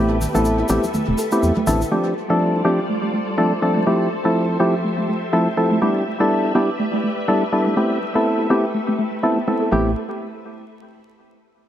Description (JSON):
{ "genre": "deep house", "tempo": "123 BPM", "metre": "4/4", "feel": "swing 57% on 16ths", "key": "A minor", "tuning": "A4 = 440 Hz", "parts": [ { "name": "soft string machine", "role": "sustained chords", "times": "0.0-9.9 s", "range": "F3 to E5", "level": "-27 LUFS", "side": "equal", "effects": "ensemble chorus" }, { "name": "percussive organ stab", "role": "stabs", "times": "0.0-9.9 s", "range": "F3 to A4", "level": "-19 LUFS", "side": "equal", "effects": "chorus, vintage 12-bit sampler grit, analog delay" }, { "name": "organ-like FM bass", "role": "bass", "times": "0.0-1.8, 9.7-9.9 s", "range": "E1 to E2", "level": "-22 LUFS", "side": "equal", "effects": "none" }, { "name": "congas and bongos", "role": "percussion", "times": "0.2-1.8 s", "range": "none", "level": "-30 LUFS", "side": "right 1 dB", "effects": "none" }, { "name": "egg shaker", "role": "percussion", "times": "0.2-1.9 s", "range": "none", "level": "-34 LUFS", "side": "left 2 dB", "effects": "analog delay" }, { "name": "soft round pluck", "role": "arpeggios", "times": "0.3-9.9 s", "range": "A3 to A4", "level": "-25 LUFS", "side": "right 1 dB", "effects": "chorus, analog delay" } ], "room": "moderate echo chamber reverb, RT60 1.6 s, studio reverb", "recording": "echo-heavy mix, vinyl crackle", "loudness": "-17 LUFS", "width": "side -11 dB against mid", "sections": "0.0-9.7 A section; 9.7-11.7 B section", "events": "filter sweep on synth arpeggio sound 0.0-9.7", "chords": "0.0 Am9; 1.9 G9sus4; 3.9 Fmaj7; 5.8 Em7; 7.8 Am9", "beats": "0.45 0.94 1.43 | 1.92 2.40 2.89 3.38 | 3.87 4.35 4.84 5.33 | 5.82 6.30 6.79 7.28 | 7.77 8.26 8.74 9.23 | 9.72" }